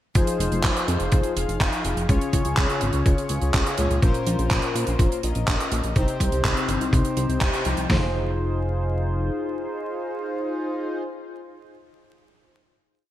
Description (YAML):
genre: italo disco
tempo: 124 BPM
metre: 4/4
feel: straight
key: F minor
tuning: A4 = 441 Hz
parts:
  - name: modern studio drum kit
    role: drums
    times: 0.1-7.9 s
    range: handclaps, hi-hat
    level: -28 LUFS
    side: right 1 dB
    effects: gated reverb
  - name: analog synth brass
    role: stabs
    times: 0.2-11.0 s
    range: Bb2 to F5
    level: -26 LUFS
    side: left 2 dB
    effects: chorus, cassette tape, ping-pong delay
  - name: chorused synth bass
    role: bass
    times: 0.2-9.3 s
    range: F1 to Bb2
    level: -25 LUFS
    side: equal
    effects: none
  - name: detuned 8-bit digital drum machine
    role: drums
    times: 0.2-8.0 s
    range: hi-hat, kick drum, snare drum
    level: -22 LUFS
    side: equal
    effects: none
room: light reverb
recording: vinyl crackle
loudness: -21 LUFS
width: side -13 dB against mid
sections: 0.2-7.9 verse; 7.9-11.8 final chord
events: band accent 7.4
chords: 0.2 Fm7; 2.1 Db; 4.0 Bbmadd9; 6.0 Cm; 7.9 Fm7